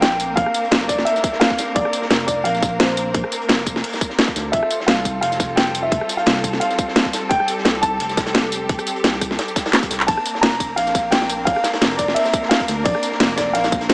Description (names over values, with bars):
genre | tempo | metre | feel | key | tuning
liquid drum and bass | 173 BPM | 4/4 | swing 54% on 16ths | Bb lydian | A4 = 440 Hz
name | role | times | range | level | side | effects
dark baby grand piano | melody | 0.0-13.9 s | C5 to Bb5 | -20 LUFS | equal | tape echo
bright studio string section | sustained chords | 0.0-13.9 s | G3 to Bb4 | -25 LUFS | equal | sidechain pumping
smooth synth bass | bass | 0.0-13.9 s | F1 to D2 | -29 LUFS | equal | none
crunchy breakbeat drum kit | drums | 0.0-13.9 s | hi-hat, snare drum | -27 LUFS | equal | none
garage drum kit | drums | 0.0-13.9 s | handclaps, hi-hat, ride cymbal, rim click, snare drum, tambourine | -18 LUFS | equal | none
electronic kick drum | drums | 0.4-13.8 s | none | -22 LUFS | equal | none
room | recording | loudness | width
moderate digital room reverb, RT60 1.0 s, small room reverb | small speaker sound | -16 LUFS | side -27 dB against mid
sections
0.0-10.1 A section; 10.1-13.9 A section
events
drop 0.0-10.1, 10.1-13.9; drum fill 9.7-10.1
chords
0.0 Bbadd9; 4.5 Fadd9; 10.1 Bbadd9